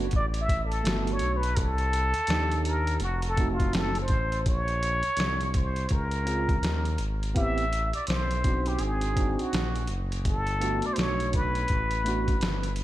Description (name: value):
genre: hip hop, jazz-hop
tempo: 83 BPM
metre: 4/4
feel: swing 63% on 16ths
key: unclear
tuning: A4 = 440 Hz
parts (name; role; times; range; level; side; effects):
- tine electric piano; accompaniment; 0.0-12.3 s; A3 to Ab4; -33 LUFS; right 3 dB; medium stereo tremolo, slapback echo
- smooth gliding synth bass; bass; 0.0-12.8 s; F1 to Eb2; -29 LUFS; equal; none
- boom bap sampler-style drum kit; drums; 0.1-12.8 s; hi-hat, kick drum, snare drum; -30 LUFS; equal; none
- trumpet with plunger mute; melody; 0.2-12.8 s; F4 to E5; -30 LUFS; equal; slapback echo, tape echo
room: light reverb, digital ambience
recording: none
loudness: -24 LUFS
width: side -14 dB against mid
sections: 0.0-4.5 A section; 4.5-12.8 B section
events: muted trumpet solo 0.0-4.5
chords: 0.0 Gmaj9; 1.6 Cm7; 3.0 F7b9; 4.5 Bbm9; 7.4 Am9; 8.8 Ab7#11; 10.2 Gmaj9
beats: 0.13 0.85 | 1.57 2.29 3.02 3.74 | 4.46 5.19 5.91 6.63 | 7.36 8.08 8.80 9.52 | 10.25 10.97 11.69 12.42